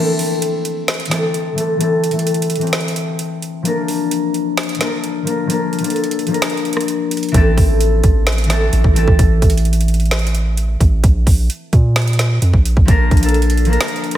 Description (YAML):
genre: hip hop, trap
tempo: 130 BPM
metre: 4/4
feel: half-time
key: A phrygian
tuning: A4 = 441 Hz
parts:
  - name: concert harp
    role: accompaniment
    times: 0.0-14.2 s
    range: E3 to C5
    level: -18 LUFS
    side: left 2 dB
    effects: low-pass filter
  - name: trap drum kit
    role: drums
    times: 0.2-14.2 s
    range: hi-hat, kick drum, rim click, snare drum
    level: -17 LUFS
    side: right 1 dB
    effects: none
  - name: long sustained 808-style bass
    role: bass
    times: 7.3-13.8 s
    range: A1 to Bb2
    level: -15 LUFS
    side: right 1 dB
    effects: none
room: light reverb, digital ambience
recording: none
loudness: -13 LUFS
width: side -12 dB against mid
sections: 0.0-14.2 A section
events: break 0.0-7.3; filter sweep on harp 0.0-7.3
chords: 0.0 Am; 3.7 Bb; 7.3 Am; 11.0 Bb